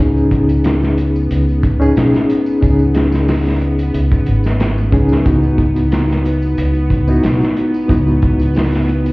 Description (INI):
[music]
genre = trip hop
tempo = 91 BPM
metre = 4/4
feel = swing 54% on 16ths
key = unclear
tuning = A4 = 441 Hz
[part]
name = bright reed electric piano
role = accompaniment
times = 0.0-9.1 s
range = B3 to G#4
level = -16 LUFS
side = left 1 dB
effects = overdrive, fast tremolo, tape echo
[part]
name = fingered electric bass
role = bass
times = 0.0-9.1 s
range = G#1 to C#2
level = -15 LUFS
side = equal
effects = none
[part]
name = bowed-like drone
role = texture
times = 0.0-9.1 s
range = B3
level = -26 LUFS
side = equal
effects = built-in reverb
[part]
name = tambourine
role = percussion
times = 0.2-9.1 s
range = none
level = -50 LUFS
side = left 1 dB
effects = none
[part]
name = crunchy breakbeat drum kit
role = drums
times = 0.3-9.1 s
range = hi-hat, kick drum, snare drum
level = -18 LUFS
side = equal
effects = none
[sound]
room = light reverb, small room ambience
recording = heard muffled through a wall, stone room reverb, EQ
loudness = -12 LUFS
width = side -23 dB against mid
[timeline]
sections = 0.0-9.1 A section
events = none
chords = 0.0 B6; 5.3 C#m11